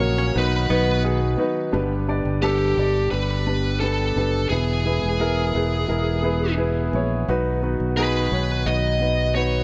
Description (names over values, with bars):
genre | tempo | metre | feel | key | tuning
pop | 87 BPM | 4/4 | straight | unclear | A4 = 440 Hz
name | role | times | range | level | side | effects
bluesy overdriven lead guitar | melody | 0.0-9.6 s | G4 to D#5 | -27 LUFS | equal | distortion, digital delay
warm upright piano | accompaniment | 0.0-9.6 s | G2 to D5 | -26 LUFS | equal | none
warm analog pad | sustained chords | 0.0-9.6 s | C#3 to G#4 | -35 LUFS | equal | none
fingered electric bass | bass | 0.0-9.6 s | E1 to B1 | -26 LUFS | equal | none
direct-recorded clean electric guitar | riff | 0.2-1.2 s | B3 to C#4 | -34 LUFS | equal | none
room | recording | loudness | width
light reverb | none | -22 LUFS | mono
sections
0.0-1.7 A section; 1.7-9.6 B section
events
none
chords
0.4 B; 1.7 G; 4.5 E; 7.3 B